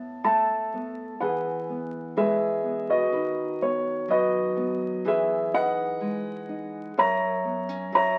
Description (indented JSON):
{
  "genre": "acoustic folk-pop ballad",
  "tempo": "62 BPM",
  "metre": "4/4",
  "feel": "straight",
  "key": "unclear",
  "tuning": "A4 = 440 Hz",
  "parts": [
    { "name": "warm concert grand piano", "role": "melody", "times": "0.0-8.2 s", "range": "F#4 to A#5", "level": "-27 LUFS", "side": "equal", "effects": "none" },
    { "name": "nylon-string guitar", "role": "accompaniment", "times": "0.0-8.2 s", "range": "F#2 to B4", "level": "-35 LUFS", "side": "equal", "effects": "none" }
  ],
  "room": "wet club reverb, RT60 0.9 s",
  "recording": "very old 78 rpm record, vinyl crackle",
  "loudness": "-26 LUFS",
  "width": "mono",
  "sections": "0.0-8.2 A section",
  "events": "none",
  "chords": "0.0 Asus2; 1.2 E; 3.1 B/D#; 5.0 Emaj7; 7.0 F#7"
}